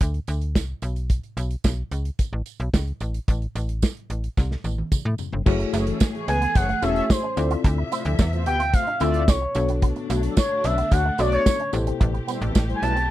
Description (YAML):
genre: early-eighties boogie funk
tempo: 110 BPM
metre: 4/4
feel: straight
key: F# minor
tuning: A4 = 440 Hz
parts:
  - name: slap-like FM bass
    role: bass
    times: 0.0-13.1 s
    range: E1 to A2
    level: -24 LUFS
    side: equal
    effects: none
  - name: modern studio drum kit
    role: drums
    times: 0.0-13.1 s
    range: crash cymbal, hi-hat, kick drum, snare drum, toms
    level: -21 LUFS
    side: equal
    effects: none
  - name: tambourine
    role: percussion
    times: 0.0-13.0 s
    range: none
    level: -38 LUFS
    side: right 24 dB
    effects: none
  - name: FM electric piano with auto-pan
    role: accompaniment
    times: 5.5-12.6 s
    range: B2 to D5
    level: -28 LUFS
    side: left 5 dB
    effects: none
  - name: warm symphonic string section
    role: sustained chords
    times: 5.5-13.1 s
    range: B2 to E5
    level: -34 LUFS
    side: equal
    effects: none
  - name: electric guitar with an envelope filter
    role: riff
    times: 5.5-13.1 s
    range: F#3 to F#4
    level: -32 LUFS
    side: right 6 dB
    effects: ensemble chorus
  - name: mellow synth brass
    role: second line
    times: 5.7-12.9 s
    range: E3 to E5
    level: -29 LUFS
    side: left 3 dB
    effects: chorus
  - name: expressive portamento lead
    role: melody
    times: 6.3-13.1 s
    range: B#4 to A5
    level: -24 LUFS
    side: equal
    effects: chorus
room: little or no reverb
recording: dry, close 1970s-style studio recording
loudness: -20 LUFS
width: side -14 dB against mid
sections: 0.0-5.5 A section; 5.5-13.1 B section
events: drum fill 4.4-5.5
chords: 0.0 D7(no3); 0.8 Bsus2; 3.0 N.C.; 5.5 F#m9; 7.4 Dm9; 9.6 Bm9; 11.7 Am9